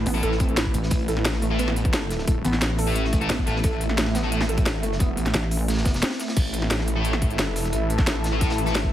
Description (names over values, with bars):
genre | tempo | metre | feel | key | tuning
dark technical drum and bass | 176 BPM | 4/4 | straight | unclear | A4 = 442 Hz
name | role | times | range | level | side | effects
swarming drone | sustained chords | 0.0-8.9 s | A3 to E5 | -32 LUFS | equal | built-in reverb, sidechain pumping
snarling distorted saw bass | bass | 0.0-8.9 s | A1 | -26 LUFS | equal | overdrive, sidechain pumping
soft round pluck | arpeggios | 0.1-6.1 s | A3 to A4 | -30 LUFS | right 2 dB | analog chorus, cassette tape, sidechain pumping, ping-pong delay
fuzz guitar | stabs | 0.1-4.4, 7.0-8.8 s | A3 to A4 | -30 LUFS | left 2 dB | distortion, ping-pong delay
pulsing pluck wobble bass | bass | 0.1-6.0 s | A1 | -24 LUFS | equal | chorus
crunchy breakbeat drum kit | drums | 0.1-8.8 s | hi-hat, snare drum | -37 LUFS | equal | high-pass filter on hats, small room ambience, high-pass filter on snare, high-pass filter on room
drum and bass drum kit | drums | 0.1-8.8 s | crash cymbal, hi-hat, snare drum | -27 LUFS | equal | small room ambience
electronic kick drum | drums | 0.4-8.9 s | none | -22 LUFS | equal | small room ambience
airy breathy pad | texture | 6.6-8.9 s | E4 to A5 | -30 LUFS | equal | chorus, sidechain pumping
room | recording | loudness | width
light reverb, digital ambience | heavily compressed radio sound, multiband compression | -21 LUFS | side -12 dB against mid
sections
0.0-6.4 A section; 6.4-8.9 A section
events
drop 0.0-6.4, 6.4-8.9; break 6.0-6.4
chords
0.0 A5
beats
0.23 0.57 | 0.91 1.25 1.59 1.93 | 2.27 2.62 2.96 3.30 | 3.64 3.98 4.32 4.66 | 5.00 5.34 5.68 6.03 | 6.37 6.71 7.05 7.39 | 7.73 8.07 8.41 8.75